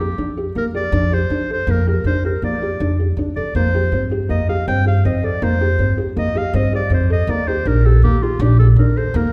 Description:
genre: contemporary instrumental, chamber music in an uneven meter.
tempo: 160 BPM.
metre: 5/4.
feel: straight.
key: unclear.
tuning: A4 = 439 Hz.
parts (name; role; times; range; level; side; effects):
clear clarinet; melody; 0.0-9.3 s; F4 to G5; -26 LUFS; equal; none.
felt-muted upright piano; arpeggios; 0.0-9.3 s; Bb3 to A4; -25 LUFS; equal; none.
upright bass; bass; 0.0-9.3 s; Bb1 to G2; -19 LUFS; equal; none.
room: wet scoring stage reverb, RT60 1.6 s.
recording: recorded in a church or concert hall.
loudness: -17 LUFS.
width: mono.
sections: 0.0-9.3 A section.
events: none.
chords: 0.0 Bb6/F (rootless); 3.5 C5/F; 7.3 Ebmaj7.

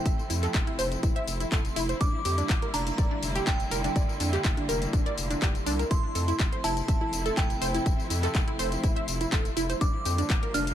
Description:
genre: progressive house.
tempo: 123 BPM.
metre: 4/4.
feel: straight.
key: F major.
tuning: A4 = 440 Hz.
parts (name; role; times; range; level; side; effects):
glassy synth bell; melody; 0.0-10.7 s; G5 to F6; -35 LUFS; right 3 dB; chorus, tremolo, sidechain pumping, digital delay.
clear studio string section; sustained chords; 0.0-10.7 s; C3 to E4; -36 LUFS; equal; sidechain pumping.
twinkling granular texture; texture; 0.0-10.7 s; E4 to C6; -42 LUFS; equal; built-in reverb, sidechain pumping.
wide unison pluck; arpeggios; 0.1-10.6 s; D4 to E5; -32 LUFS; right 1 dB; sidechain pumping, digital delay.
round analog bass; bass; 0.1-10.7 s; F1 to F2; -32 LUFS; equal; sidechain pumping.
electronic kick drum; drums; 0.1-10.4 s; none; -26 LUFS; equal; none.
house drum kit; drums; 0.1-10.7 s; handclaps, hi-hat, tambourine; -34 LUFS; left 3 dB; none.
room: little or no reverb.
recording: none.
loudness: -25 LUFS.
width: side -11 dB against mid.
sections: 0.0-10.7 A section.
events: none.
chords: 0.0 Fmaj7; 2.0 Gm7/F; 5.9 Fmaj7; 9.8 Gm7/F.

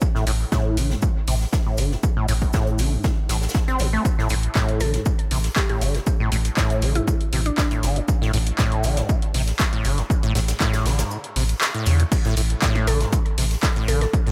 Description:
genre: acid house.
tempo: 119 BPM.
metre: 4/4.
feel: straight.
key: A minor pentatonic.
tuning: A4 = 440 Hz.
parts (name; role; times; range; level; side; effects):
electronic kick drum; drums; 0.0-14.2 s; none; -24 LUFS; equal; overdrive.
swinging big-band drum kit; drums; 0.0-14.3 s; hi-hat, shaker, snare drum; -37 LUFS; equal; sidechain pumping on hats, high-pass filter on hats, high-pass filter on snare, sidechain pumping on perc, high-pass filter on perc, high-pass filter on room, dub echo.
acid bass, saw; riff; 0.1-14.3 s; G2 to C4; -28 LUFS; equal; ensemble chorus, dub echo.
round analog bass; bass; 0.3-14.1 s; G1 to E2; -24 LUFS; equal; tube saturation, sidechain pumping.
punchy analog drum machine; drums; 0.3-14.3 s; crash cymbal, handclaps, hi-hat, snare drum; -30 LUFS; equal; overdrive.
mallet-like synth pluck; melody; 4.8-7.7, 12.9-14.1 s; D4 to A4; -32 LUFS; equal; chorus, tape echo.
room: light reverb, small room ambience.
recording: echo-heavy mix.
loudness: -21 LUFS.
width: mono.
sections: 0.0-12.1 A section; 12.1-14.3 B section.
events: filter sweep on acid bass 0.0-12.1; kick drops out 11.1-12.1; drop 12.1-14.3.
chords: 0.0 A7(no3); 12.1 N.C..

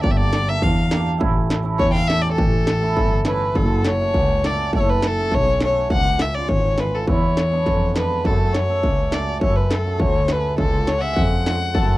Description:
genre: klezmer.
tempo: 102 BPM.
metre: 2/4.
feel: straight.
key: A phrygian dominant, F# minor from 3.6 s.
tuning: A4 = 440 Hz.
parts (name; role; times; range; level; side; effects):
warm violin; melody; 0.0-12.0 s; A4 to G5; -22 LUFS; left 2 dB; none.
cimbalom; accompaniment; 0.0-12.0 s; G#3 to Bb4; -27 LUFS; right 7 dB; none.
clear double bass; bass; 0.0-12.0 s; F#1 to F#2; -21 LUFS; equal; none.
industrial drum kit; drums; 0.0-11.9 s; kick drum, snare drum; -22 LUFS; equal; distortion.
accordion; second line; 11.7-12.0 s; A4; -26 LUFS; left 14 dB; none.
room: little or no reverb.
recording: dry, close 1970s-style studio recording, faint mains hum.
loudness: -17 LUFS.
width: side -17 dB against mid.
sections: 0.0-3.6 A section; 3.6-12.0 B section.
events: none.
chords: 0.0 Gm; 1.2 A; 3.6 F#m; 5.9 C#; 7.1 E; 8.3 F#m; 10.6 C#.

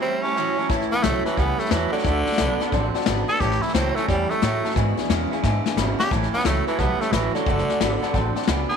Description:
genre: rockabilly.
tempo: 177 BPM.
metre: 4/4.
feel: swing 65% on 8ths.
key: A major.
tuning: A4 = 439 Hz.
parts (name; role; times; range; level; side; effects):
raspy tenor saxophone; melody; 0.0-8.8 s; D3 to A4; -24 LUFS; right 1 dB; none.
clear upright piano; accompaniment; 0.0-8.8 s; B4 to B5; -31 LUFS; left 10 dB; none.
picked steel-string acoustic guitar; accompaniment; 0.0-8.8 s; E2 to F#4; -31 LUFS; left 12 dB; none.
electric guitar through a small old amp; riff; 0.0-8.8 s; E2 to C4; -27 LUFS; right 17 dB; spring reverb.
upright bass; bass; 0.7-8.7 s; F#1 to A2; -25 LUFS; right 1 dB; none.
soft brush drum kit; drums; 0.7-8.7 s; hi-hat, kick drum, snare drum; -26 LUFS; left 5 dB; none.
room: light reverb, small room ambience.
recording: 1960s-style stereo with parts hard left and right.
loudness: -19 LUFS.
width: side -6 dB against mid.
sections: 0.7-8.8 A section.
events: break 0.0-0.7; drum fill 5.4-6.1.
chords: 0.0 A; 2.1 D; 3.4 A; 4.8 E7; 6.1 A; 7.5 D.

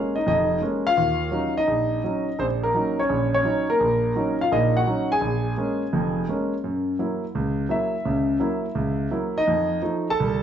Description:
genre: solo jazz.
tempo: 169 BPM.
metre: 4/4.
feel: swing 66% on 8ths.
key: unclear.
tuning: A4 = 439 Hz.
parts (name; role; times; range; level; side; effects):
warm concert grand piano; solo; 0.0-10.4 s; F1 to A5; -21 LUFS; equal; none.
room: moderate large studio reverb, RT60 0.8 s.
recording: band playing live in one room, nothing above 8.0 kHz.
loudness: -21 LUFS.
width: side -9 dB against mid.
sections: 0.0-10.4 A section.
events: none.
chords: 0.0 Bbm7; 1.0 Ebm7; 5.2 Bbm7; 6.6 Gb7; 9.5 F7.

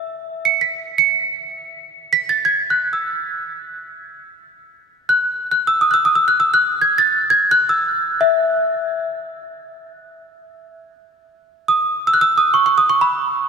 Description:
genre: Arabic maqam ensemble.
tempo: free time.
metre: none.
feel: none.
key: E maqam ajam.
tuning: A4 = 440 Hz.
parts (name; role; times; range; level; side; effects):
small celesta; solo; 0.5-13.5 s; E5 to C#7; -15 LUFS; right 1 dB; none.
room: wet cathedral reverb, RT60 4.5 s.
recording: recorded in a church or concert hall.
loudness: -14 LUFS.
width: side -5 dB against mid.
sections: 0.0-11.2 A section; 11.2-13.5 A section.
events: none.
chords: none.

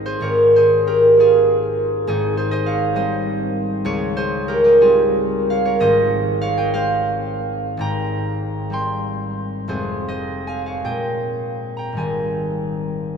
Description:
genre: classical, solo harp piece.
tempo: 50-70 BPM (dotted quarters).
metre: 6/8.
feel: rubato.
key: Ab major.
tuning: A4 = 444 Hz.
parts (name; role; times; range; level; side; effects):
concert harp; solo; 0.0-13.2 s; F1 to C6; -16 LUFS; right 1 dB; none.
room: wet cathedral reverb, RT60 6.4 s.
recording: in a vast, echoing space.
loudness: -16 LUFS.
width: side -6 dB against mid.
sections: 0.0-13.2 A section.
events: none.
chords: 0.2 Bbm9/Ab; 2.1 Abmaj7; 3.9 Dbmaj7#11; 5.8 Ab6; 7.8 Cm7/Ab; 9.7 Fm7; 10.8 Bbm11; 12.0 Abmaj7.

